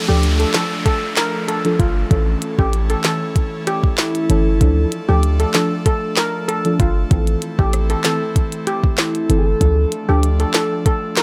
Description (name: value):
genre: dancehall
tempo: 96 BPM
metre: 4/4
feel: straight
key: D minor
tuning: A4 = 437 Hz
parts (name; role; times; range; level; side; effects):
- deep mellow chord stab; accompaniment; 0.0-10.7 s; E3 to A4; -24 LUFS; equal; chorus, sidechain pumping
- airy breathy pad; sustained chords; 0.0-11.2 s; E3 to A4; -28 LUFS; equal; chorus, sidechain pumping
- downlifter; sound effects; 0.0-4.6 s; none; -31 LUFS; equal; none
- steel pan; melody; 0.1-11.2 s; F4 to Bb4; -25 LUFS; equal; digital delay
- warm 808-style bass; bass; 0.1-10.5 s; G1 to D2; -19 LUFS; equal; none
- glitchy drum kit; drums; 0.2-11.2 s; handclaps, hi-hat, kick drum, rim click, snare drum; -20 LUFS; equal; overdrive
- breathy flute-like synth lead; second line; 4.0-4.9, 9.0-9.9 s; E4 to A4; -25 LUFS; equal; chorus, digital delay
room: light reverb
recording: none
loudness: -18 LUFS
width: mono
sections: 0.0-11.2 A section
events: none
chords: 0.0 Dm; 2.1 A; 4.6 Dm; 7.1 Am; 9.6 Dm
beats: 0.23 0.86 1.48 | 2.11 2.73 3.36 3.98 | 4.61 5.23 5.86 6.48 | 7.11 7.73 8.36 8.98 | 9.61 10.23 10.86